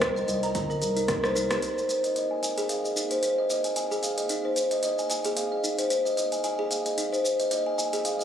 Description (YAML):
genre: organic downtempo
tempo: 112 BPM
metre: 4/4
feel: swing 56% on 16ths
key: F minor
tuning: A4 = 440 Hz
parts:
  - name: kalimba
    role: arpeggios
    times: 0.0-8.2 s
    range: Eb4 to Bb5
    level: -26 LUFS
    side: equal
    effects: low-pass filter, ping-pong delay
  - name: round analog bass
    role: bass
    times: 0.0-1.6 s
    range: G1 to C2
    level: -32 LUFS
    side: right 1 dB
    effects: sidechain pumping
  - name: deep house drum kit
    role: drums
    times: 0.0-8.2 s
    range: cabasa, hi-hat, rim click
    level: -31 LUFS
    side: right 1 dB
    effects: none
  - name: electronic kick drum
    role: drums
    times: 0.0-1.2 s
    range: none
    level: -35 LUFS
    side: right 1 dB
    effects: none
room: moderate concert hall reverb, RT60 2.0 s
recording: recorded on a phone in the room, club reverb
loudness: -24 LUFS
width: side -8 dB against mid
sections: 0.0-1.6 A section; 1.6-8.2 B section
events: drum fill 1.1-1.6; filter sweep on kalimba 1.6-8.2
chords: 0.0 Cm7; 1.6 Fm7